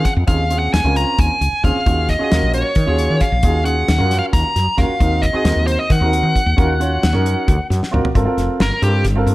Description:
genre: electric jazz fusion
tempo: 267 BPM (eighths)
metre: 7/8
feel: straight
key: Eb dorian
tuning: A4 = 444 Hz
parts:
  - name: dark smooth lead guitar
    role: melody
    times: 0.0-9.1 s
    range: G4 to Bb5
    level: -20 LUFS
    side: equal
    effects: overdrive, slapback echo, plate reverb
  - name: warm grand piano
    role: accompaniment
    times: 0.0-9.3 s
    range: C4 to F#5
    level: -22 LUFS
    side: right 2 dB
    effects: none
  - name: woody fretless electric bass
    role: bass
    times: 0.0-9.3 s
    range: F1 to Eb3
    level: -18 LUFS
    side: equal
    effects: none
  - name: damped 70s drum kit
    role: drums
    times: 0.0-9.3 s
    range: hi-hat, kick drum, snare drum, toms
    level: -19 LUFS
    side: equal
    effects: none
room: light reverb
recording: none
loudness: -14 LUFS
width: side -18 dB against mid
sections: 0.0-8.2 A section; 8.2-9.3 B section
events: grand piano fill 7.5-8.2; drum fill 7.8-8.2; lead electric guitar solo 8.2-9.3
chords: 0.0 Bbm9/Eb; 1.9 Ebm11; 5.0 Ab9/Eb (rootless); 6.6 Ebm9; 7.5 D7alt; 8.2 Gm11

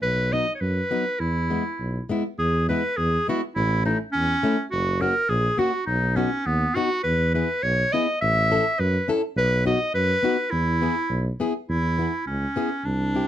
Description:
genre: alpine folk, alpine dance band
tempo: 103 BPM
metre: 2/4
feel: straight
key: E major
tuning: A4 = 440 Hz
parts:
  - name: bright clarinet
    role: melody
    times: 0.0-13.3 s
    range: B3 to E5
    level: -24 LUFS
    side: right 1 dB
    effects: none
  - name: mellow tuba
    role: bass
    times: 0.0-13.2 s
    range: F#1 to F#2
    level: -25 LUFS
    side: right 1 dB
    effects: none
  - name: fingerpicked plugged-in steel-string acoustic guitar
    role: accompaniment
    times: 0.3-13.3 s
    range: F#3 to A4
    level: -25 LUFS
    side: left 3 dB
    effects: none
room: light reverb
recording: close, detailed microphones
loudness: -21 LUFS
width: side -11 dB against mid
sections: 0.0-2.4 A section; 2.4-11.7 A section; 11.7-13.3 B section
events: none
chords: 0.0 B; 1.2 E; 3.5 A; 4.7 F#; 5.9 B; 7.0 E; 8.2 A; 9.4 B; 10.5 E

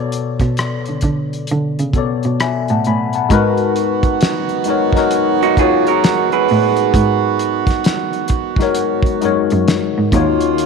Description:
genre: R&B, neo-soul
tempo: 66 BPM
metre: 4/4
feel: swing 62% on 16ths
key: G# dorian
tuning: A4 = 440 Hz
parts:
  - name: tine electric piano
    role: accompaniment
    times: 0.0-10.7 s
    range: B2 to B5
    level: -18 LUFS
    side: left 9 dB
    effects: lush chorus
  - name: warm cello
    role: bass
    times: 0.0-10.7 s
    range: D#2 to D3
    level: -19 LUFS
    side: right 2 dB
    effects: none
  - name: cloth-damped thuddy drum kit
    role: drums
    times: 0.1-10.7 s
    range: hi-hat, kick drum, rim click, snare drum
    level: -18 LUFS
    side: equal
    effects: none
  - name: warm horn section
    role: stabs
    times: 3.3-10.7 s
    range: A#3 to F#4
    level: -19 LUFS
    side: right 15 dB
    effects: tape echo
  - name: electric guitar through a small old amp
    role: second line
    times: 5.4-7.6 s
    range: D#4 to B4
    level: -17 LUFS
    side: right 16 dB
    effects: warbly pitch drift
room: light reverb, small room ambience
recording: 1960s-style stereo with parts hard left and right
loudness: -13 LUFS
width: side -5 dB against mid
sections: 0.0-3.3 A section; 3.3-10.7 B section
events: none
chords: 0.0 Bm9; 3.3 G#m9; 10.1 D#m9

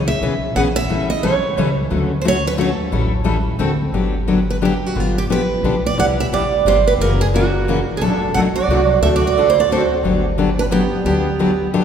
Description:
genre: acoustic string swing (jazz manouche)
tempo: 177 BPM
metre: 3/4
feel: swing 59% on 8ths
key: G major from 3.9 s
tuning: A4 = 440 Hz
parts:
  - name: picked steel-string acoustic guitar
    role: accompaniment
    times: 0.0-11.8 s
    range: B2 to A4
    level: -19 LUFS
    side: left 3 dB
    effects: none
  - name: upright bass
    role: bass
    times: 0.0-11.8 s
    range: F#1 to D2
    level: -21 LUFS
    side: equal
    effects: none
  - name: picked steel-string acoustic guitar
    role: melody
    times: 0.1-11.7 s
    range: F4 to F#5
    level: -19 LUFS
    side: right 5 dB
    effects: none
  - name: musette accordion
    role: second line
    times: 7.3-11.7 s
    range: A#3 to A4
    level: -25 LUFS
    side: right 5 dB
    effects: none
room: wet church reverb, RT60 3.3 s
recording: recorded in a church or concert hall, faint mains hum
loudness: -15 LUFS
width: side -8 dB against mid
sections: 0.0-3.9 A section; 3.9-11.8 B section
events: none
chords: 0.0 C#m7; 0.9 A7; 1.9 Dmaj7; 2.9 A7; 3.6 D7; 3.9 Gmaj7; 5.0 G7; 6.0 Cmaj7; 7.0 F#7; 8.0 Bm7; 9.0 D7; 10.0 Gmaj7

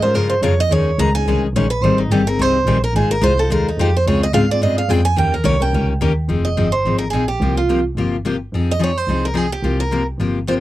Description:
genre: acoustic string swing (jazz manouche)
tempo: 215 BPM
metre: 4/4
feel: swing 57% on 8ths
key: F minor from 6.3 s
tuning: A4 = 440 Hz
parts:
  - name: picked steel-string acoustic guitar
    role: melody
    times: 0.0-10.5 s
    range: Eb4 to Bb5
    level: -20 LUFS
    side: right 3 dB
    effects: none
  - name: picked steel-string acoustic guitar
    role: accompaniment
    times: 0.0-10.6 s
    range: C3 to C5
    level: -19 LUFS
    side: left 4 dB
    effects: none
  - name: warm double bass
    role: bass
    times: 0.0-10.6 s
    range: F1 to Ab2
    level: -19 LUFS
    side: right 1 dB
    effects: none
room: little or no reverb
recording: dry, close 1970s-style studio recording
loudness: -15 LUFS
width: side -15 dB against mid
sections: 0.0-6.3 A section; 6.3-10.6 B section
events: steel-string acoustic guitar solo 0.0-6.3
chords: 0.0 Db6; 0.7 Eb7sus4; 1.8 Abmaj7; 2.9 Fm7/Ab; 4.1 Dbmaj7; 5.2 Eb7; 6.3 Fm7; 7.4 C7sus4; 8.5 Fm7; 9.6 C7sus4

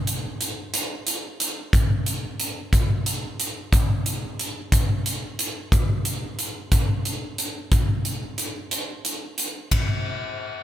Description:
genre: rock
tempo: 60 BPM (dotted quarters)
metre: 6/8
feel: straight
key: none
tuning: none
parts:
  - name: big rock drum kit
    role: drums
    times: 0.1-9.9 s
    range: hi-hat, kick drum, ride cymbal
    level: -22 LUFS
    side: equal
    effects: none
room: little or no reverb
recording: none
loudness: -22 LUFS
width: side -12 dB against mid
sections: 0.0-9.7 A section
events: none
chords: none

